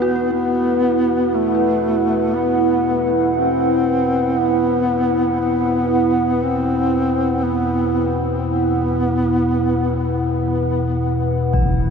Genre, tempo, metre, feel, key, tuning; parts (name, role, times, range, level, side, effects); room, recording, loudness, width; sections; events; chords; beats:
dark ambient drone; 59 BPM; 4/4; straight; A4 = 440 Hz
mellow duduk; melody; 0.0-10.5 s; A3 to C4; -21 LUFS; left 1 dB; ping-pong delay
dark analog pad; sustained chords; 0.0-11.9 s; E3 to F#5; -18 LUFS; right 1 dB; chorus, phaser
dark detuned synth bell; arpeggios; 0.0-11.5 s; F#4 to B4; -28 LUFS; right 1 dB
deep rumbling drone; drone; 0.0-11.9 s; E2 to B2; -25 LUFS; left 2 dB; built-in reverb
quartz singing bowl; texture; 0.0-11.9 s; barely audible
impact; percussion; 11.5-11.7 s; -18 LUFS; equal; low-pass filter on sfx
wet huge ambient reverb, RT60 9.0 s; dreamy mix soaked in reverb; -16 LUFS; side -6 dB against mid
0.0-11.9 A section
fade-in on synth drone 0.0-11.9; fade-in on impacts and reversed cymbals 0.0-11.9
0.0 E5
0.34 1.36 2.37 | 3.39 4.41 5.42 6.44 | 7.46 8.47 9.49 10.51 | 11.53